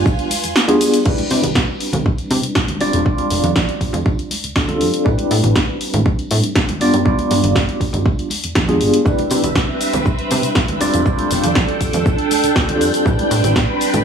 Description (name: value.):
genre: filtered disco house.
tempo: 120 BPM.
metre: 4/4.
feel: straight.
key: unclear.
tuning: A4 = 440 Hz.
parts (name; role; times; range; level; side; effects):
tine electric piano; accompaniment; 0.0-14.0 s; G3 to D5; -19 LUFS; equal; medium tremolo, phaser, sidechain pumping, low-pass filter.
phased string machine; sustained chords; 0.0-1.0, 9.3-14.0 s; C4 to Ab5; -20 LUFS; right 2 dB; ensemble chorus, phaser, sidechain pumping, low-pass filter.
plucky analog bass; bass; 0.0-14.0 s; F1 to C3; -19 LUFS; right 1 dB; sidechain pumping, low-pass filter.
electronic kick drum; drums; 0.1-13.7 s; none; -18 LUFS; equal; none.
punchy analog drum machine; drums; 0.1-14.0 s; crash cymbal, hi-hat, ride cymbal, shaker, snare drum; -21 LUFS; equal; sidechain pumping on hats, sidechain pumping on cymbals, sidechain pumping on perc.
tambourine and congas; percussion; 0.1-14.0 s; none; -28 LUFS; right 1 dB; sidechain pumping on perc, low-pass filter on perc.
room: light reverb, digital ambience.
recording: small room ambience.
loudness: -14 LUFS.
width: side -7 dB against mid.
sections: 0.0-1.1 A section; 1.1-14.0 B section.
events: drop 0.0-1.1; filter sweep 1.1-14.0.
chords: 0.0 G7b9; 1.1 Cmaj7; 2.8 F69; 5.1 Am11; 6.8 G7b9; 9.1 Cmaj7; 10.8 F69; 13.1 Am11.